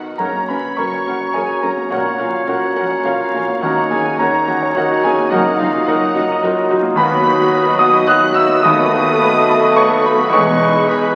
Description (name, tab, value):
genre	classical, romantic movement for piano and orchestra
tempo	106 BPM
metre	3/4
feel	rubato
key	F# major, B major from 7.0 s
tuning	A4 = 441 Hz
part	clear symphonic violin section	melody	0.0-11.2 s	E#5 to F#6	-35 LUFS	equal	none
part	warm grand piano	melody	0.0-11.2 s	B1 to F#6	-19 LUFS	equal	none
part	rich studio violin section	second line	0.0-11.2 s	E#5 to F#6	-28 LUFS	equal	none
part	rich studio viola section	accompaniment	0.0-11.2 s	D#3 to A#4	-26 LUFS	equal	none
part	clear oboe	second line	0.2-11.2 s	C#5 to D#5	-24 LUFS	equal	none
part	silver concert flute	second line	0.2-11.2 s	A#5 to B5	-28 LUFS	equal	none
part	warm clarinet	second line	0.2-11.2 s	C#4 to B4	-28 LUFS	equal	none
part	warm bassoon	accompaniment	0.2-11.2 s	F#3 to A3	-25 LUFS	equal	none
part	mellow French horn section	sustained chords	0.2-11.2 s	A#3 to D#4	-29 LUFS	equal	none
part	mellow trombone section	sustained chords	0.2-11.2 s	C#3 to A3	-28 LUFS	equal	none
part	dark trumpet section	stabs	0.2-11.2 s	F#4 to B4	-29 LUFS	equal	none
part	rich symphonic cello section	bass	0.2-10.8 s	D#2 to A#2	-32 LUFS	equal	none
part	rich symphonic double bass section	bass	0.2-10.8 s	E1 to D#2	-34 LUFS	equal	none
part	timpani	percussion	5.3-6.1 s	F#2	-32 LUFS	equal	none
room	wet scoring stage reverb, RT60 2.0 s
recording	very old 78 rpm record, vinyl crackle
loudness	-15 LUFS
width	mono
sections	0.2-11.2 A section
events	none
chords	0.2 F#; 1.9 F#/A#; 3.6 D#m7; 5.3 D#m/F#; 7.0 B/D#; 8.6 B7/D#; 10.3 Emaj7